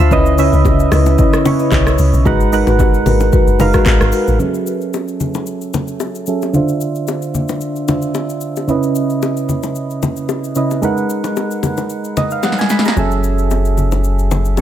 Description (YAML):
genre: amapiano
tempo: 112 BPM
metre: 4/4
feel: swing 55% on 16ths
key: unclear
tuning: A4 = 438 Hz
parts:
  - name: soft electric-piano-like synth keys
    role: accompaniment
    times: 0.0-14.6 s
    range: C#3 to E6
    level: -17 LUFS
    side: right 3 dB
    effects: chorus, low-pass filter
  - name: deep log drum bass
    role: bass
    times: 0.0-4.4 s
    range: F#1 to D2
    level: -14 LUFS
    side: equal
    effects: none
  - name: marimba with soft mallets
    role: stabs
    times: 0.1-4.3 s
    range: E4 to D#5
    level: -19 LUFS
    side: left 3 dB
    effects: digital delay
  - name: deep house drum kit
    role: drums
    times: 0.1-14.6 s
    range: handclaps, hi-hat, kick drum, rim click, shaker, snare drum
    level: -18 LUFS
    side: equal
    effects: none
  - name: congas and bongos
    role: percussion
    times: 0.1-14.6 s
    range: none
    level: -22 LUFS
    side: left 4 dB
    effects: none
  - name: punchy sub bass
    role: bass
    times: 13.0-14.6 s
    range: F#1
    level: -15 LUFS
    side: equal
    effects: none
room: light reverb, digital ambience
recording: none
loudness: -13 LUFS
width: side -11 dB against mid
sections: 0.0-4.4 A section; 4.4-14.6 B section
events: drop 0.0-4.4; filter sweep on synth keys 4.4-14.6; drum fill 12.4-13.0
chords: 0.1 C#m9; 2.3 G#m9; 4.4 F#m9; 6.5 Dm9; 8.7 C#m9; 10.8 G#m9; 13.0 F#m9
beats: | 0.11 0.65 1.18 1.72 | 2.25 2.79 3.33 3.86 | 4.40 4.93 5.47 6.00 | 6.54 7.08 7.61 8.15 | 8.68 9.22 9.76 10.29 | 10.83 11.36 11.90 12.43 | 12.97 13.51 14.04 14.58